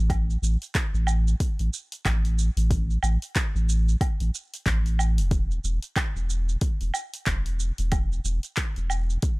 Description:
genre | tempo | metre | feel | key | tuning
organic downtempo | 92 BPM | 4/4 | swing 59% on 16ths | unclear | A4 = 439 Hz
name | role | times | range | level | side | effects
warm sub bass | bass | 0.0-9.2 s | E1 to A1 | -23 LUFS | equal | transformer saturation, sidechain pumping
deep house drum kit | drums | 0.1-9.4 s | handclaps, hi-hat, shaker, woodblock | -31 LUFS | right 2 dB | none
electronic kick drum | drums | 0.1-9.4 s | none | -26 LUFS | equal | none
room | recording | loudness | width
little or no reverb | dry, gritty hardware recording, transformer saturation | -23 LUFS | side -24 dB against mid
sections
0.0-9.4 A section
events
none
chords
none

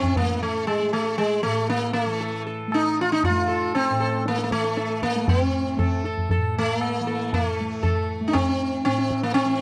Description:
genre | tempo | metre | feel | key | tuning
indian classical, Hindustani | 118 BPM | 4/4 | straight | A raga todi | A4 = 439 Hz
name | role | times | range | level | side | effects
sitar | melody | 0.0-9.6 s | G#3 to A4 | -25 LUFS | equal | none
tanpura | drone | 0.0-9.6 s | A2 to A3 | -32 LUFS | equal | none
tabla | percussion | 0.0-9.5 s | none | -29 LUFS | equal | none
room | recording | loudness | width
light reverb | dry, close 1970s-style studio recording | -24 LUFS | mono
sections
0.0-9.6 A section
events
none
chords
none

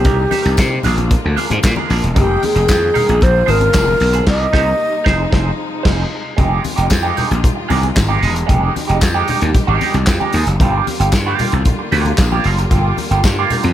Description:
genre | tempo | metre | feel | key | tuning
disco | 114 BPM | 4/4 | straight | F dorian | A4 = 440 Hz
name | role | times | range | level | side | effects
alto flute | melody | 0.0-5.3 s | G4 to Eb5 | -16 LUFS | left 1 dB | none
electric guitar at the edge of break-up | accompaniment | 0.0-13.7 s | Ab3 to C5 | -20 LUFS | right 5 dB | wah
clear studio string section | sustained chords | 0.0-13.7 s | C3 to G5 | -25 LUFS | left 1 dB | none
gritty slap bass | bass | 0.0-13.7 s | E1 to C3 | -16 LUFS | equal | overdrive
warm soul drum kit | drums | 0.0-13.7 s | crash cymbal, handclaps, hi-hat, kick drum, snare drum | -18 LUFS | equal | none
congas | percussion | 0.1-13.7 s | none | -24 LUFS | left 2 dB | none
tambourine | percussion | 0.6-13.4 s | none | -32 LUFS | left 4 dB | none
room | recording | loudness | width
light reverb | none | -12 LUFS | side -12 dB against mid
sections
0.0-6.4 A section; 6.4-13.7 B section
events
band accent 4.3-6.4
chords
0.1 Cm7; 0.8 Bb7; 2.2 Fm11; 3.2 Bb7; 4.3 Cm7; 5.1 Fm7; 6.4 Fm9; 10.6 Gm7

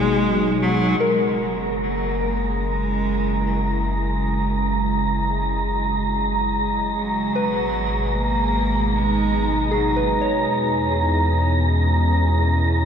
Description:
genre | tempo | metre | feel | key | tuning
ambient | 76 BPM | 4/4 | straight | unclear | A4 = 439 Hz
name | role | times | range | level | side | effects
clear cello | melody | 0.0-10.3 s | E3 to A#3 | -27 LUFS | left 1 dB | ping-pong delay
warm analog pad | sustained chords | 0.0-12.9 s | B2 to A#5 | -27 LUFS | left 1 dB | wide subtle chorus
soft synth bell | arpeggios | 0.0-12.9 s | G#4 to C#5 | -27 LUFS | left 1 dB | chorus, ping-pong delay
warm sub bass | bass | 0.0-12.9 s | F#1 to E2 | -24 LUFS | equal | none
organ-like drone | drone | 0.5-12.9 s | G#3 to G#4 | -27 LUFS | right 3 dB | ensemble chorus, built-in reverb
wind-like tuned noise texture | texture | 1.5-12.9 s | A#5 | -25 LUFS | equal | built-in reverb
room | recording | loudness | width
wet cathedral reverb, RT60 5.6 s | dark, warm production | -18 LUFS | side -7 dB against mid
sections
1.0-12.9 A section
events
fade-in on analog synth pad 1.0-12.9; fade-in on cello 1.0-12.9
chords
0.0 G#m7; 1.0 F#7; 7.3 G#m7; 10.5 E6

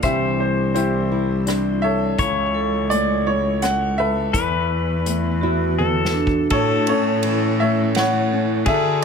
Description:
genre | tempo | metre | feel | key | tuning
acoustic folk-pop ballad | 83 BPM | 3/4 | straight | A major | A4 = 443 Hz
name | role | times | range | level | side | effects
clear grand piano | melody | 0.0-9.0 s | E4 to F#5 | -22 LUFS | equal | none
pedal steel guitar | second line | 0.0-9.0 s | G#4 to C#5 | -26 LUFS | left 6 dB | tape echo
nylon-string guitar | accompaniment | 0.0-9.0 s | E2 to F#4 | -25 LUFS | left 3 dB | none
dark cello | bass | 0.0-9.0 s | C2 to D3 | -23 LUFS | right 1 dB | none
unplugged drum kit | drums | 0.0-9.0 s | hi-hat, kick drum, ride cymbal, rim click, snare drum, toms | -26 LUFS | equal | none
vibraphone with hard mallets | arpeggios | 2.5-8.7 s | C#4 to A4 | -26 LUFS | right 4 dB | none
room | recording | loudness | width
light reverb | close, detailed microphones | -17 LUFS | side -6 dB against mid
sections
0.0-6.5 A section; 6.5-9.0 B section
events
drum fill 5.8-6.5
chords
0.0 Cadd9; 2.2 A/C#; 4.3 Esus4; 6.5 A

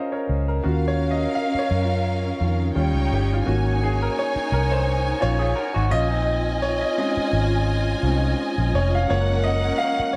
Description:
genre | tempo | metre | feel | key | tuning
soul | 85 BPM | 4/4 | swing 54% on 16ths | unclear | A4 = 440 Hz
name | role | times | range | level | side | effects
warm grand piano | accompaniment | 0.0-10.2 s | Eb3 to F5 | -27 LUFS | equal | none
electric guitar through a small old amp | riff | 0.0-0.6, 5.2-7.1 s | C4 to Bb4 | -32 LUFS | equal | none
vintage muted fingered electric bass | bass | 0.3-10.0 s | F1 to Gb2 | -25 LUFS | equal | none
warm symphonic string section | second line | 0.6-10.2 s | Db4 to Ab5 | -29 LUFS | equal | none
room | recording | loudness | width
light reverb, small room ambience | none | -22 LUFS | mono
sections
0.6-10.2 A section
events
grand piano solo 0.6-10.2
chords
0.0 Bbm9; 0.6 Ebm9; 2.8 Eb7; 3.5 Ab9sus4; 5.9 Bbm11; 9.1 Gbmaj7

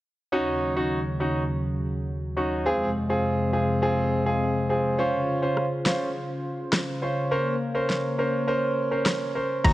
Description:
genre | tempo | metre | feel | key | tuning
dancehall | 103 BPM | 4/4 | straight | Eb dorian | A4 = 440 Hz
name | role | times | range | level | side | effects
clear concert grand piano | accompaniment | 0.3-9.7 s | C4 to Db5 | -25 LUFS | right 1 dB | none
warm analog pad | sustained chords | 0.3-9.6 s | Eb2 to C5 | -28 LUFS | left 1 dB | chorus, sidechain pumping
deep house drum kit | drums | 5.6-9.7 s | crash cymbal, kick drum, rim click, snare drum | -25 LUFS | equal | vintage 12-bit sampler grit
soft round pluck | melody | 9.6-9.7 s | Bb5 | -22 LUFS | left 1 dB | chorus
plucky analog bass | bass | 9.6-9.7 s | Eb2 | -24 LUFS | equal | none
room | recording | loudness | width
moderate lush hall reverb, RT60 2.5 s | worn, warbling old tape, cassette tape, warbly pitch drift | -23 LUFS | side -16 dB against mid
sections
0.3-9.6 A section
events
none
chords
0.3 Ebm7; 2.7 Fm; 5.0 Dbmaj7; 7.3 Bbmadd9

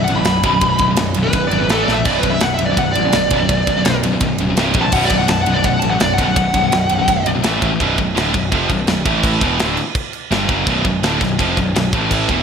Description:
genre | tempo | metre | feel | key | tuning
heavy metal | 167 BPM | 4/4 | straight | B phrygian | A4 = 440 Hz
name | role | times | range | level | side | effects
high-gain lead guitar | melody | 0.0-7.3 s | A4 to B5 | -18 LUFS | equal | distortion
distorted electric guitar | riff | 0.0-12.4 s | B1 to A3 | -21 LUFS | right 10 dB | overdrive
scooped high-gain guitar | riff | 0.0-12.4 s | B1 to A3 | -20 LUFS | left 7 dB | distortion
fuzz picked electric bass | bass | 0.0-12.4 s | B0 to A#1 | -22 LUFS | equal | overdrive
tight metal drum kit | drums | 0.1-12.4 s | crash cymbal, kick drum, ride cymbal, snare drum | -20 LUFS | equal | none
room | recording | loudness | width
moderate lush hall reverb, RT60 1.7 s, studio ambience | bright 1980s-style digital production | -14 LUFS | side -6 dB against mid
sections
0.0-7.8 A section; 7.8-12.4 B section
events
lead electric guitar solo 0.0-7.8; drum fill 1.9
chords
0.0 B5; 1.7 A5; 2.1 Bm; 4.6 C5; 4.9 B5; 7.4 A5; 7.8 Bm; 9.1 A5; 9.4 Bm; 11.9 A5

